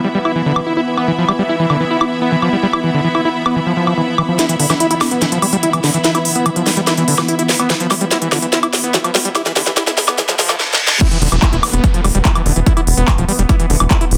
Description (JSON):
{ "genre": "psychedelic trance", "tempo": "145 BPM", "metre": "4/4", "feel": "straight", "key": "unclear", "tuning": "A4 = 440 Hz", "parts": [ { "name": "bubbling stepped-filter texture", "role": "sustained chords", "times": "0.0-14.2 s", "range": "E3 to B3", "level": "-25 LUFS", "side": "equal", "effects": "chorus, built-in reverb, vintage 12-bit sampler grit, sidechain pumping" }, { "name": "overdriven acid bass", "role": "riff", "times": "0.0-14.1 s", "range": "D3 to E4", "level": "-20 LUFS", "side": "equal", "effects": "sidechain pumping, delay" }, { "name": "downlifter and reverse cymbal", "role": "sound effects", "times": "0.3-1.1, 10.5-14.2 s", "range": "none", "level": "-26 LUFS", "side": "equal", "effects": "none" }, { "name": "rich studio string section", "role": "texture", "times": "0.0-10.6 s", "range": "B3 to B5", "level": "-24 LUFS", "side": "equal", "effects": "sidechain pumping" }, { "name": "techno drum kit", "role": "drums", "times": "0.3-14.2 s", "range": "crash cymbal, handclaps, hi-hat, snare drum, woodblock", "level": "-18 LUFS", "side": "equal", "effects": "overdrive, high-pass filter on hats, high-pass filter on perc, high-pass filter on snare, high-pass filter on cymbals" }, { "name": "electronic kick drum", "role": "drums", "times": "11.0-14.0 s", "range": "none", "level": "-16 LUFS", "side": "equal", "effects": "overdrive" }, { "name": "tight sequencer bass", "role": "bass", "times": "11.2-14.2 s", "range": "D1 to E1", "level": "-17 LUFS", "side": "equal", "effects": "none" } ], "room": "light reverb, digital ambience", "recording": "dense, heavily limited modern master, high-pass filter", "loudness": "-15 LUFS", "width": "mono", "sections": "0.0-4.4 A section; 4.4-11.0 B section; 11.0-14.2 C section", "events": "filter sweep on acid bass 0.0-4.4, 4.4-11.0; build-up 4.4-11.0; drum fill 4.4-10.6, 10.6-11.0; filter sweep on synth texture 4.4-11.0; filter sweep 4.4-11.0; reverse cymbal 10.5-11.0; drop 11.0-14.2", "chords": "0.0 E5" }